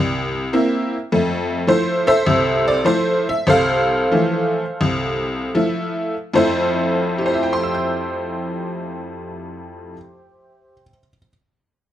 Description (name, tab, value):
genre	solo jazz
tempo	72-105 BPM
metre	4/4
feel	swing 69% on 8ths, rubato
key	F major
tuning	A4 = 440 Hz
part	tack piano	solo	0.0-11.3 s	C2 to G6	-17 LUFS	equal	none
room	moderate large studio reverb, RT60 1.0 s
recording	band playing live in one room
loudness	-17 LUFS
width	side -11 dB against mid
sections	0.0-6.4 A section; 6.4-9.6 B section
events	slowing down 1.1-6.4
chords	0.0 C7; 1.1 Fmaj7